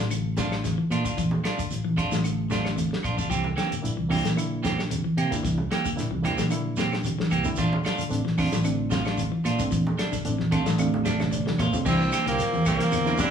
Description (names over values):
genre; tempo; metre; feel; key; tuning
afrobeat; 112 BPM; 4/4; straight; C mixolydian; A4 = 441 Hz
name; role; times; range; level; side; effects
fingered electric bass; bass; 0.0-13.3 s; A1 to C3; -29 LUFS; right 1 dB; none
clean electric guitar; arpeggios; 0.1-13.3 s; C3 to E3; -30 LUFS; left 3 dB; none
damped 70s drum kit; drums; 0.1-13.3 s; crash cymbal, hi-hat, kick drum, snare drum; -31 LUFS; left 1 dB; none
claves; percussion; 0.1-13.1 s; none; -41 LUFS; left 4 dB; none
shekere; percussion; 0.1-13.3 s; none; -38 LUFS; right 3 dB; none
electric guitar at the edge of break-up; stabs; 0.4-13.3 s; E3 to G4; -30 LUFS; right 4 dB; none
congas; percussion; 0.4-13.3 s; none; -32 LUFS; right 2 dB; none
reed electric piano; accompaniment; 3.8-13.2 s; A3 to A5; -32 LUFS; right 3 dB; none
raspy tenor saxophone; melody; 11.9-13.3 s; Bb3 to D4; -27 LUFS; right 2 dB; none
bright trumpet; second line; 11.9-13.3 s; C4 to E4; -34 LUFS; right 3 dB; none
warm trombone section; second line; 11.9-13.3 s; Bb2 to D3; -35 LUFS; left 4 dB; none
room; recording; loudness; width
wet large studio reverb, RT60 0.9 s; band playing live in one room, small room ambience; -23 LUFS; side -8 dB against mid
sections
0.0-11.9 A section; 11.9-13.3 B section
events
reed electric piano fill 10.3-11.9; drum fill 10.8-11.9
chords
0.0 Bbmaj7; 3.3 C7; 7.6 Bbmaj7; 11.9 C7